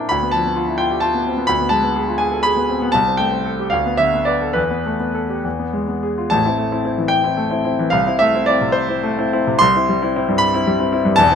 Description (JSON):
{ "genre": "classical, romantic character piece for solo piano", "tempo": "66-88 BPM (dotted quarters)", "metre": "6/8", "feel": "rubato", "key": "A minor", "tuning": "A4 = 438 Hz", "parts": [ { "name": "clear grand piano", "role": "solo", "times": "0.0-11.3 s", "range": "E1 to C6", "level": "-15 LUFS", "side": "left 1 dB", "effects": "none" } ], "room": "light reverb", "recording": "close, detailed microphones", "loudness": "-15 LUFS", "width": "side -7 dB against mid", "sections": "0.0-6.3 A section; 6.3-11.3 B section", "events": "none", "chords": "0.1 Bdim/D; 1.5 Ddim7; 2.9 Am/C; 3.7 Dm69; 4.6 Esus4; 5.4 E; 6.3 Am; 7.9 Am/C; 9.6 C", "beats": "| 0.10 0.79 | 1.49 2.20 | 2.94 3.73 | 4.57 5.45 | 6.33 7.13 | 7.94 8.75 | 9.62 10.41 | 11.18" }